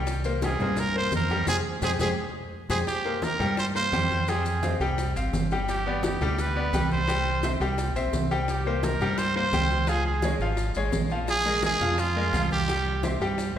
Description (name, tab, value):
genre	latin, salsa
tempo	171 BPM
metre	4/4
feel	straight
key	unclear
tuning	A4 = 440 Hz
part	bright grand piano	accompaniment	0.0-13.6 s	F3 to G5	-29 LUFS	left 2 dB	none
part	deep dub fingered electric bass	bass	0.0-13.6 s	G1 to G2	-29 LUFS	equal	none
part	bongos	percussion	0.1-13.6 s	none	-36 LUFS	left 4 dB	none
part	congas	percussion	0.1-13.6 s	none	-33 LUFS	right 3 dB	none
part	maracas	percussion	0.1-13.6 s	none	-42 LUFS	left 3 dB	none
part	growling trumpet	melody	0.4-13.2 s	F4 to C5	-28 LUFS	right 2 dB	none
room	wet scoring stage reverb, RT60 2.0 s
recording	recorded in a church or concert hall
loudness	-23 LUFS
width	side -10 dB against mid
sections	0.0-2.9 A section; 2.9-13.6 B section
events	band accent 1.5-2.9; drum fill 2.0-2.9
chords	0.1 C5; 1.5 Fmadd9; 2.9 C7sus4; 4.3 Fmadd9; 5.7 G; 7.1 C; 8.5 C5; 9.9 Db; 11.3 Bb5; 12.7 C